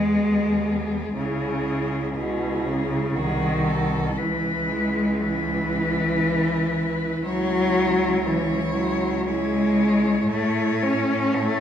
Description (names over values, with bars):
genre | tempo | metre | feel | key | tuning
classical, lyrical piece for cello ensemble | 59 BPM | 3/4 | rubato | C# minor from 7.3 s | A4 = 440 Hz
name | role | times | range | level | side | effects
rich cello | melody | 0.0-11.6 s | G#4 to C#5 | -30 LUFS | left 4 dB | none
rich cello | second line | 0.0-11.6 s | B3 to F#4 | -29 LUFS | right 5 dB | none
warm cello | accompaniment | 0.0-11.6 s | B2 to C#4 | -23 LUFS | left 2 dB | none
rich cello | bass | 0.0-11.6 s | B#1 to A2 | -29 LUFS | right 2 dB | none
room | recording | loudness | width
wet recital hall reverb, RT60 1.5 s | minimal, uncompressed stereo recording | -20 LUFS | side -9 dB against mid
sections
0.0-11.6 A section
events
none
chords
0.0 E; 1.2 C#m; 3.2 G#7/B#; 4.2 C#m7; 7.3 C#m; 10.3 A